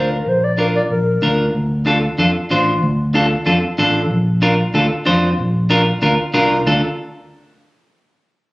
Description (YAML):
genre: latin, cumbia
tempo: 188 BPM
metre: 4/4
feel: straight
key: D minor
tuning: A4 = 439 Hz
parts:
  - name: dark clarinet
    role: melody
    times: 0.0-1.4 s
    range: Bb4 to D5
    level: -19 LUFS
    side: left 1 dB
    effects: none
  - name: clean electric guitar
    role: accompaniment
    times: 0.0-6.8 s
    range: D4 to C5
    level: -16 LUFS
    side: equal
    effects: none
  - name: fingered electric bass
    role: bass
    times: 0.0-6.8 s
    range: A1 to F2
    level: -18 LUFS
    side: equal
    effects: none
room: moderate large studio reverb, RT60 1.3 s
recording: recorded on a phone in the room, club reverb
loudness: -14 LUFS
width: side -21 dB against mid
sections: 0.0-1.5 A section; 1.5-6.7 B section; 6.7-7.9 C section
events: none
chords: 0.0 Bb; 1.5 Dm; 4.1 Bbadd9; 6.7 Dm